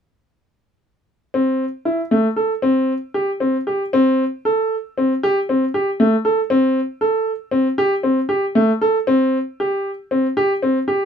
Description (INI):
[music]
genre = contemporary instrumental, contemporary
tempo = 233 BPM (eighths)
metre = 5/8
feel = straight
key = C major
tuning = A4 = 442 Hz
[part]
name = clear grand piano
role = solo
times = 1.3-11.0 s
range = A3 to A4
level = -16 LUFS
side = equal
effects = none
[sound]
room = light reverb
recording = none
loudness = -16 LUFS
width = side -7 dB against mid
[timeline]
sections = 1.3-3.9 A section; 3.9-11.1 B section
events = none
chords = none